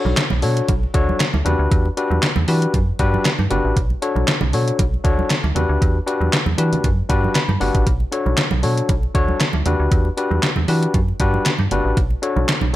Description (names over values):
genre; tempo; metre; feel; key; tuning
early-eighties boogie funk; 117 BPM; 4/4; straight; unclear; A4 = 435 Hz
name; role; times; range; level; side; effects
barky tine electric piano; accompaniment; 0.0-12.8 s; D4 to B5; -22 LUFS; left 3 dB; overdrive
metallic FM bass; bass; 0.1-12.8 s; G1 to E3; -20 LUFS; equal; none
congas; percussion; 0.1-12.7 s; none; -27 LUFS; right 6 dB; none
detuned 8-bit digital drum machine; drums; 0.2-12.6 s; handclaps, hi-hat, kick drum, snare drum; -20 LUFS; equal; overdrive, gated reverb
room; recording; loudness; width
digital ambience; none; -16 LUFS; side -15 dB against mid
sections
0.0-12.8 A section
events
tine electric piano fill 7.1-7.9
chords
0.0 Bm9; 1.5 Em9; 3.8 Bm9; 5.6 Em9; 7.9 Bm9; 9.7 Em9; 12.0 Bm9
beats
0.17 0.69 1.20 | 1.71 2.23 2.74 3.25 | 3.76 4.28 4.79 5.30 | 5.82 6.33 6.84 7.35 | 7.87 8.38 8.89 9.40 | 9.92 10.43 10.94 11.46 | 11.97 12.48